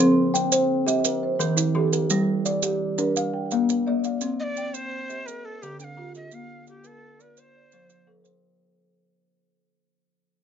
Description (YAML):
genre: southern african traditional, mbira-style interlocking cycle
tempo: 114 BPM (dotted quarters)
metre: 12/8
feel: straight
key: C equiheptatonic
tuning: A4 = 443 Hz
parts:
  - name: kalimba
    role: arpeggios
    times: 0.0-8.6 s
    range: D3-29c to G5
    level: -24 LUFS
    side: left 5 dB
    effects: none
  - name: marimba with medium mallets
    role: arpeggios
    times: 0.0-8.6 s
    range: D3-29c to G5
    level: -25 LUFS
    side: right 5 dB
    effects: slapback echo
  - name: maracas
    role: percussion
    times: 0.0-8.4 s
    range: none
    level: -26 LUFS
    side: right 8 dB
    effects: none
  - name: breathy Native American-style cedar flute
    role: melody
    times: 4.4-8.1 s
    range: G4-20c to G5+22c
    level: -36 LUFS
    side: right 1 dB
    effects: none
room: light reverb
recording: nothing above 7.5 kHz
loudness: -21 LUFS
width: side -8 dB against mid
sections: 0.0-8.4 A section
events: fade-out 0.0-8.4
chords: 0.0 Cm; 1.0 Eb; 2.1 Gm; 3.2 Bb; 4.2 Cm; 5.3 Dm; 6.3 Bb; 7.4 F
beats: | 0.00 0.52 1.05 1.57 | 2.10 2.63 3.15 3.68 | 4.21 4.74 5.26 5.79 | 6.32 6.85 7.38 7.90